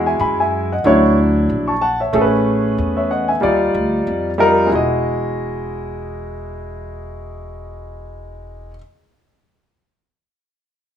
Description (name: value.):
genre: hip hop, jazz-hop.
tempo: 93 BPM.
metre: 4/4.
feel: swing 58% on 16ths.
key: E major.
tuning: A4 = 439 Hz.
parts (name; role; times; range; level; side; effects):
clear upright piano; accompaniment; 0.0-8.8 s; F#3 to C#6; -17 LUFS; equal; plate reverb.
upright bass; bass; 0.0-8.8 s; E1 to F#2; -23 LUFS; equal; none.
room: wet studio reverb, RT60 0.6 s.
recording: rough home demo mix, small room ambience.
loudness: -14 LUFS.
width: side -9 dB against mid.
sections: 0.0-4.7 A section; 4.7-7.3 B section.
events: none.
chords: 0.0 Emaj9; 0.8 Dmaj9; 2.1 Amaj9; 3.4 D#maj9; 4.7 Emaj9.